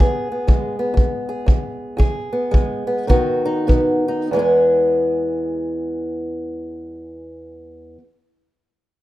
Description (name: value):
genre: acoustic country blues, solo or duo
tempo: 92-124 BPM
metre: 4/4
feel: swing 64% on 8ths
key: E major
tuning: A4 = 439 Hz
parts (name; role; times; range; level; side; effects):
- fingerpicked old ladder-braced acoustic guitar; melody; 0.0-8.0 s; E2 to G#4; -19 LUFS; equal; slapback echo
- kick drum; drums; 0.0-3.9 s; none; -16 LUFS; equal; none
room: small room ambience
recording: rough home demo mix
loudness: -17 LUFS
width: side -16 dB against mid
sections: 0.0-4.3 A section; 4.3-9.0 B section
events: slowing down 0.0-4.3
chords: 0.0 E; 3.1 B; 4.3 E